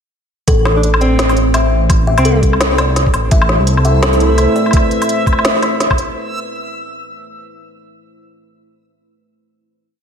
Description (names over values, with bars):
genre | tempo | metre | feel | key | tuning
half-time drum and bass | 169 BPM | 4/4 | swing 59% on 16ths, half-time | A minor | A4 = 440 Hz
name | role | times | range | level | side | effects
kalimba | arpeggios | 0.5-5.1 s | A4 to E5 | -20 LUFS | left 3 dB | analog delay
dark detuned saw bass | bass | 0.5-4.5 s | A1 to C2 | -14 LUFS | equal | none
electronic kick drum | drums | 0.5-6.0 s | none | -14 LUFS | equal | none
organic electronic drum kit | drums | 0.5-6.1 s | hi-hat, snare drum, woodblock | -17 LUFS | equal | overdrive
warm alto saxophone | melody | 0.8-2.4 s | C4 to D4 | -20 LUFS | right 1 dB | analog delay
deep dark ambient pad | sustained chords | 3.6-4.7 s | A3 to C5 | -19 LUFS | right 1 dB | chorus, built-in reverb, sidechain pumping
backwards swelling texture | texture | 3.6-4.7 s | E5 | -24 LUFS | equal | built-in reverb
room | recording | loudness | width
moderate lush hall reverb, RT60 1.8 s | dreamy mix soaked in reverb | -11 LUFS | side -7 dB against mid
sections
0.5-6.2 drop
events
drop 0.5-6.2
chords
0.5 Am